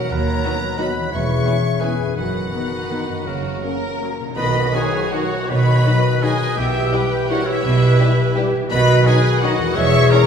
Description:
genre	classical, orchestral ballroom waltz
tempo	153-191 BPM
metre	3/4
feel	rubato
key	B major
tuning	A4 = 439 Hz
part	rich symphonic violin section	melody	0.0-10.3 s	E5 to C#6	-26 LUFS	left 4 dB	none
part	clear oboe	second line	0.0-10.3 s	E4 to C#5	-28 LUFS	right 1 dB	none
part	mellow hollow concert flute	second line	0.0-10.3 s	G4 to E5	-28 LUFS	equal	none
part	warm clarinet	second line	0.0-10.3 s	F#4 to C#5	-28 LUFS	equal	none
part	mellow bassoon	accompaniment	0.0-10.3 s	C#3 to F#3	-28 LUFS	right 2 dB	none
part	concert harp	arpeggios	0.0-10.3 s	E2 to G#4	-26 LUFS	left 8 dB	none
part	rich symphonic cello section	bass	0.1-10.1 s	D#2 to B2	-22 LUFS	right 1 dB	none
part	warm studio double bass section	bass	0.1-10.1 s	E1 to D#2	-22 LUFS	right 1 dB	none
part	warm symphonic violin section	second line	0.4-10.2 s	C#4 to A#4	-31 LUFS	left 2 dB	none
part	clear symphonic viola section	accompaniment	0.4-10.3 s	D#3 to E5	-27 LUFS	right 2 dB	none
part	mellow French horn section	sustained chords	0.4-10.3 s	F#3 to F#4	-29 LUFS	left 3 dB	none
part	cymbal swell and tam-tam	percussion	2.2-5.8 s	none	-32 LUFS	left 1 dB	none
part	clear trumpet section	stabs	4.4-10.3 s	E4 to C#5	-25 LUFS	right 2 dB	none
room	wet scoring stage reverb, RT60 1.8 s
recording	heard from further back in the room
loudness	-16 LUFS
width	side -7 dB against mid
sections	0.0-4.4 A section; 4.4-10.3 B section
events	band accent 4.4-4.7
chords	0.1 B/D#; 1.1 C#m7/E; 2.2 B/F#; 4.4 B; 6.6 Em/B; 8.7 B

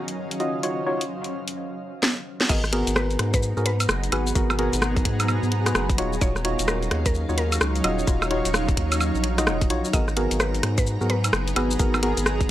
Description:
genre	UK garage, two-step garage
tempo	129 BPM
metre	4/4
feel	swing 63% on 16ths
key	G# minor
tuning	A4 = 440 Hz
part	mallet-like synth pluck	melody	0.0-11.4 s	F#4 to D#5	-32 LUFS	left 1 dB	chorus, analog delay
part	soft string machine	sustained chords	0.0-12.5 s	D#3 to A#5	-34 LUFS	equal	phaser, ensemble chorus, sidechain pumping
part	granular cloud pad	texture	0.0-12.5 s	F#3 to A#5	-30 LUFS	equal	built-in reverb, sidechain pumping
part	garage drum kit	drums	0.1-12.5 s	crash cymbal, hi-hat, rim click, shaker, snare drum, woodblock	-25 LUFS	equal	none
part	percussive organ stab	stabs	0.4-12.2 s	B3 to D#5	-28 LUFS	equal	chorus, analog delay
part	saturated sub bass	bass	2.5-12.5 s	D#1 to G#2	-26 LUFS	equal	none
part	electronic kick drum	drums	2.5-12.5 s	none	-23 LUFS	equal	none
room	little or no reverb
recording	dry, gritty hardware recording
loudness	-21 LUFS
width	side -13 dB against mid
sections	0.0-2.5 A section; 2.5-12.5 B section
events	filter sweep on drum 0.0-2.5; filter sweep on synth stab 0.0-2.5; filter sweep on string machine 0.0-2.5; drum fill 2.0-2.5; drop 2.5-12.5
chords	0.0 D#m9; 2.5 G#m9; 6.0 D#m9; 9.9 G#m9

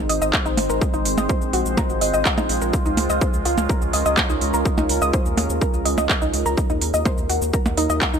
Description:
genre	melodic techno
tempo	125 BPM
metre	4/4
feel	straight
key	unclear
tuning	A4 = 440 Hz
part	deep dark ambient pad	sustained chords	0.0-8.2 s	Gb3 to C5	-25 LUFS	right 1 dB	chorus, built-in reverb, sidechain pumping
part	round analog bass	bass	0.0-8.2 s	Ab1 to Eb2	-26 LUFS	equal	tube saturation, sidechain pumping
part	woody wave-folded pluck	arpeggios	0.1-8.2 s	Eb4 to Eb6	-24 LUFS	equal	analog chorus, sidechain pumping, tape echo
part	techno drum kit	drums	0.1-8.2 s	handclaps, hi-hat, percussion blips, shaker	-23 LUFS	right 2 dB	none
part	electronic kick drum	drums	0.3-8.1 s	none	-22 LUFS	equal	overdrive
room	light reverb, digital ambience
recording	none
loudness	-18 LUFS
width	side -7 dB against mid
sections	0.0-8.2 A section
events	none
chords	0.0 Ab; 2.7 Db6; 6.6 Ebm

